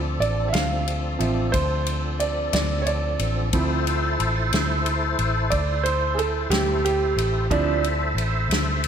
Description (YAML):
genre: slow blues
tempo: 60 BPM (dotted quarters)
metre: 12/8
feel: straight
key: D minor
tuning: A4 = 438 Hz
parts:
  - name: tonewheel organ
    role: sustained chords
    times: 0.0-8.9 s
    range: F3 to E5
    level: -27 LUFS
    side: equal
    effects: chorus vibrato, slow rotary speaker
  - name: vintage muted fingered electric bass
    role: bass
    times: 0.0-8.9 s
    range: A1 to D2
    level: -25 LUFS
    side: left 1 dB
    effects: none
  - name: bright upright piano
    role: accompaniment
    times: 0.2-8.9 s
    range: F3 to F5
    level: -26 LUFS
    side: right 4 dB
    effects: slapback echo
  - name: natural country drum kit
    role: drums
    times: 0.2-8.9 s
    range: kick drum, ride cymbal, snare drum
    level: -28 LUFS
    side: left 1 dB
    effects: none
room: moderate scoring stage reverb, RT60 1.9 s, small room ambience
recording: big arena sound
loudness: -20 LUFS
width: side -8 dB against mid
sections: 0.0-8.9 A section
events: upright piano solo 0.0-8.9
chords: 0.0 Dm7